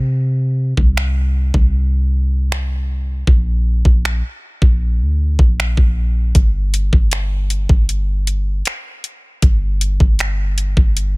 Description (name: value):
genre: contemporary R&B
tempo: 78 BPM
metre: 4/4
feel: straight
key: G minor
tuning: A4 = 440 Hz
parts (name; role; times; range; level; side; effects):
- clean 808-style bass; bass; 0.0-11.2 s; G1 to C3; -16 LUFS; equal; none
- smooth R&B drum kit; drums; 0.8-11.1 s; finger snaps, hi-hat, kick drum; -14 LUFS; equal; soft clipping on snare
room: little or no reverb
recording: dense, heavily limited modern master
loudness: -14 LUFS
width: side -25 dB against mid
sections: 0.0-11.2 A section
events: hi-hats muted 3.3-6.3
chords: none